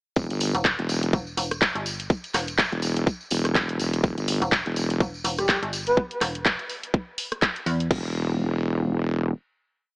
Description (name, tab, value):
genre	bass house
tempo	124 BPM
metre	4/4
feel	swing 57% on 16ths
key	E minor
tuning	A4 = 444 Hz
part	wobble bass	bass	0.2-5.0, 7.9-9.3 s	E1 to G1	-24 LUFS	equal	chorus, overdrive, sidechain pumping
part	electronic kick drum	drums	0.2-8.0 s	none	-22 LUFS	equal	none
part	tambourine	percussion	0.2-5.9 s	none	-34 LUFS	equal	none
part	garage drum kit	drums	0.3-8.0 s	crash cymbal, handclaps, hi-hat, rim click	-26 LUFS	equal	none
part	metallic FM bass	bass	0.5-7.9 s	E1 to E2	-28 LUFS	equal	overdrive, sidechain pumping
part	breathy flute-like synth lead	melody	5.4-6.0 s	G4 to B4	-26 LUFS	equal	ensemble chorus, vintage 12-bit sampler grit, dub echo
room	light reverb, digital ambience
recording	small speaker sound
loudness	-22 LUFS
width	side -37 dB against mid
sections	0.2-7.9 drop; 7.9-10.0 final note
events	drop 0.2-7.9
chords	0.2 Em; 7.9 N.C.